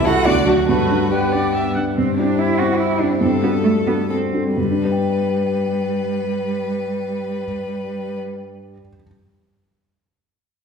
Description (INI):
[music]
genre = quick classical-period movement for piano quintet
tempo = 122-148 BPM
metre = 3/4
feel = rubato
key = G major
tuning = A4 = 440 Hz
[part]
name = clear violin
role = melody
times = 0.0-8.2 s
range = F#4 to F#5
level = -24 LUFS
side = left 4 dB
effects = none
[part]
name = rich violin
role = second line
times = 0.0-1.7 s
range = A3 to A4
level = -26 LUFS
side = right 1 dB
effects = none
[part]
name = dark baby grand piano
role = accompaniment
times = 0.0-9.1 s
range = C2 to G5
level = -21 LUFS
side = left 1 dB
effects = none
[part]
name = rich viola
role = accompaniment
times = 0.0-1.8 s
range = E4 to F#5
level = -24 LUFS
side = right 5 dB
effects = none
[part]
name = rich cello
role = second line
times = 0.1-8.2 s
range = F#3 to F#4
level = -22 LUFS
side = right 4 dB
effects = none
[sound]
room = wet recital hall reverb, RT60 1.5 s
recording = heard from further back in the room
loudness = -17 LUFS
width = side -6 dB against mid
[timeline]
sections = 0.0-2.0 A section; 2.0-4.6 B section; 4.6-7.4 C section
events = slowing down 1.3-4.6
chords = 0.3 D; 0.7 G; 2.0 C/G; 3.2 D7/G; 4.6 G